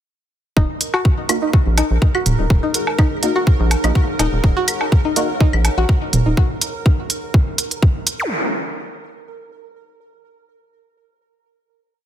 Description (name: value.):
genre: minimal techno.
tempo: 124 BPM.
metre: 4/4.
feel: swing 53% on 16ths.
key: Eb minor.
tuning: A4 = 436 Hz.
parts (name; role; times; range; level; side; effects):
string-like resonator pluck; riff; 0.6-6.3 s; Eb4 to Gb4; -23 LUFS; left 1 dB; chorus, sidechain pumping, ping-pong delay.
rubbery square bass; bass; 0.6-6.3 s; Eb1 to Bb1; -18 LUFS; equal; sidechain pumping.
electronic kick drum; drums; 0.6-7.9 s; none; -15 LUFS; equal; none.
granular cloud pad; texture; 2.1-6.4 s; Eb4 to Gb5; -30 LUFS; left 1 dB; built-in reverb, sidechain pumping.
pulsing gated texture; texture; 0.8-8.3 s; Bb4; -30 LUFS; right 3 dB; chorus, built-in reverb, sidechain pumping.
electronic hi-hat; drums; 0.8-8.2 s; none; -20 LUFS; right 2 dB; none.
electronic woodblock, claves and toms; percussion; 0.9-6.2 s; none; -24 LUFS; right 1 dB; digital delay.
filtered dub chord stab; stabs; 1.3-5.3 s; Bb3 to Gb4; -23 LUFS; right 1 dB; phaser, lush chorus, cassette tape, digital delay.
zap; sound effects; 8.2-8.3 s; none; -22 LUFS; equal; none.
room: light reverb, digital ambience.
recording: dense, heavily limited modern master.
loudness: -15 LUFS.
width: side -11 dB against mid.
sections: 0.6-8.3 groove.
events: fade-in on ambient pad 0.6-6.4.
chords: 0.6 Ebm.